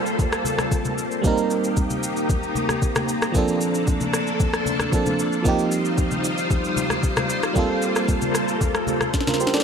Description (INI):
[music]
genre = amapiano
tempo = 114 BPM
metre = 4/4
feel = straight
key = C dorian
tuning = A4 = 436 Hz
[part]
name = FM electric piano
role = accompaniment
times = 0.0-9.6 s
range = F3 to D5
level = -25 LUFS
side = right 4 dB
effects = chorus
[part]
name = string machine, full ensemble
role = sustained chords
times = 0.0-9.6 s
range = G3 to C5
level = -25 LUFS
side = left 2 dB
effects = ensemble chorus, sidechain pumping
[part]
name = smooth R&B drum kit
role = drums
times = 0.1-9.6 s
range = kick drum, rim click, shaker, snare drum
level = -24 LUFS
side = left 1 dB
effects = none
[part]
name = congas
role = percussion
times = 0.2-9.4 s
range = none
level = -31 LUFS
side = left 3 dB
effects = none
[sound]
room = light reverb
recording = none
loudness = -20 LUFS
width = side -6 dB against mid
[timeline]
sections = 0.0-9.6 A section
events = drum fill 9.1-9.6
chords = 0.0 Gm11; 1.2 Cm7; 3.3 Bbmaj9; 5.5 Eb69; 7.6 Gm11